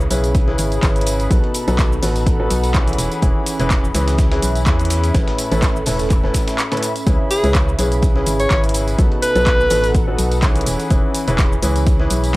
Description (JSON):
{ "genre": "piano house", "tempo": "125 BPM", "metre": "4/4", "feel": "swing 55% on 16ths", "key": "unclear", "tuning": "A4 = 437 Hz", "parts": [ { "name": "organ-like FM bass", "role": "bass", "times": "0.0-12.4 s", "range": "E1 to E2", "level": "-20 LUFS", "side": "equal", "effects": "sidechain pumping" }, { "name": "punchy analog drum machine", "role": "drums", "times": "0.0-12.3 s", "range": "cabasa, handclaps, hi-hat", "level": "-25 LUFS", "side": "equal", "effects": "cassette tape" }, { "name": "airy breathy pad", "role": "texture", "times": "0.0-12.4 s", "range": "C#4 to B5", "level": "-26 LUFS", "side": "equal", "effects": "chorus, sidechain pumping" }, { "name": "clear upright piano", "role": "riff", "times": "0.1-12.3 s", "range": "A2 to B4", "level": "-22 LUFS", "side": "equal", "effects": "sidechain pumping" }, { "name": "dusty soul sampler-style drum kit", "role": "drums", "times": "0.1-12.2 s", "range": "hi-hat, snare drum", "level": "-34 LUFS", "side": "equal", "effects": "sidechain pumping on hats, high-pass filter on hats, cassette tape, high-pass filter on snare, high-pass filter on room" }, { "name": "tambourine", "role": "percussion", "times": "0.1-12.3 s", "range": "none", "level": "-32 LUFS", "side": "equal", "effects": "none" }, { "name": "electronic kick drum", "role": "drums", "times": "0.3-12.0 s", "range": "none", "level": "-17 LUFS", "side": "equal", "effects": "cassette tape" }, { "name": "bright alto saxophone", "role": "melody", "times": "7.3-9.9 s", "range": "G#4 to C#5", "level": "-20 LUFS", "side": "equal", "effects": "none" } ], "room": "light reverb", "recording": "home recording on cassette", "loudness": "-14 LUFS", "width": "side -20 dB against mid", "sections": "0.0-12.4 A section", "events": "break 6.6-7.1", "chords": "0.0 C#m7; 1.3 B7; 3.0 E6; 5.1 Aadd9; 7.1 C#m7; 9.0 B7; 10.7 E6", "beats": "0.35 0.83 | 1.31 1.79 2.27 2.75 | 3.23 3.71 4.19 4.67 | 5.15 5.63 6.11 6.59 | 7.07 7.55 8.03 8.51 | 8.99 9.47 9.95 10.43 | 10.91 11.39 11.87 12.35" }